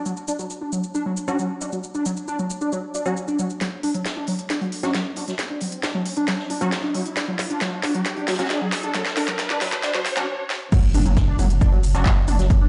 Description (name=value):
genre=driving peak-time techno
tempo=135 BPM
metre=4/4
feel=straight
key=unclear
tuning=A4 = 440 Hz
part: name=overdriven synth lead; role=riff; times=0.0-12.7 s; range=F#3 to D4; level=-28 LUFS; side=equal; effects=distortion, tube saturation, ensemble chorus, sidechain pumping, tape echo
part: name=techno drum kit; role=drums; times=0.1-12.6 s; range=crash cymbal, handclaps, hi-hat, ride cymbal, shaker, snare drum, toms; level=-30 LUFS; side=equal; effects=sidechain pumping on perc, high-pass filter on perc, high-pass filter on snare, sidechain pumping on hats, high-pass filter on hats, sidechain pumping on cymbals, high-pass filter on cymbals, sidechain pumping on toms, high-pass filter on toms, high-pass filter on room
part: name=rave stab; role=stabs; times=1.3-12.0 s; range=F#3 to F#4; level=-31 LUFS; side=equal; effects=chorus, built-in reverb, sidechain pumping, digital delay
part: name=soft-mallet drum kit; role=drums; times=3.6-12.6 s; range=hi-hat, snare drum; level=-38 LUFS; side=equal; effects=sidechain pumping on hats, high-pass filter on hats, high-pass filter on snare, high-pass filter on room
part: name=riser and impact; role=sound effects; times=5.0-12.5 s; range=none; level=-33 LUFS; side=equal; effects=none
part: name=electronic kick drum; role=drums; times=10.7-12.6 s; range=none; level=-20 LUFS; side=equal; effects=none
part: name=warm sub bass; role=bass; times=10.8-12.7 s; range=F#1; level=-23 LUFS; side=equal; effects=sidechain pumping, low-pass filter
room=moderate stone room reverb, RT60 0.9 s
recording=played on a big sound system in a bare room, large studio reverb, high-pass filter, nothing above 10.6 kHz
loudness=-23 LUFS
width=mono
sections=0.0-3.6 A section; 3.6-10.7 B section; 10.7-12.7 C section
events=build-up 3.6-10.7; drum fill 3.6-10.3, 10.5; filter sweep on analog synth lead 3.6-10.7; filter sweep 3.6-10.7; riser 5.0-10.3; break 10.3-10.7; drop 10.7-12.7; impact 10.7-12.5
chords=0.0 F#5